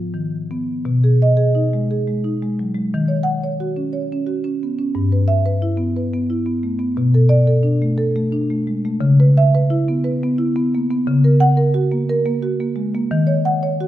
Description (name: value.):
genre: classical, contemporary piece for solo marimba.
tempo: 59 BPM (dotted quarters).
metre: 6/8.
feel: rubato.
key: unclear.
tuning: A4 = 442 Hz.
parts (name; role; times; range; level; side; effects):
marimba with soft mallets; solo; 0.0-13.9 s; G2 to F#5; -16 LUFS; equal; none.
room: wet recital hall reverb, RT60 1.3 s.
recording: none.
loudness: -16 LUFS.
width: side -13 dB against mid.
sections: 0.9-13.9 A section.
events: none.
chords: 0.0 G#m6; 0.9 B6; 2.9 D#m7; 5.0 G6; 7.0 Bm7; 9.0 C#m7; 11.0 F#/C#; 13.1 D#m7.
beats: | 0.85 1.89 | 2.92 3.94 | 4.95 5.98 | 6.99 8.01 | 9.02 10.03 | 11.05 12.07 | 13.11.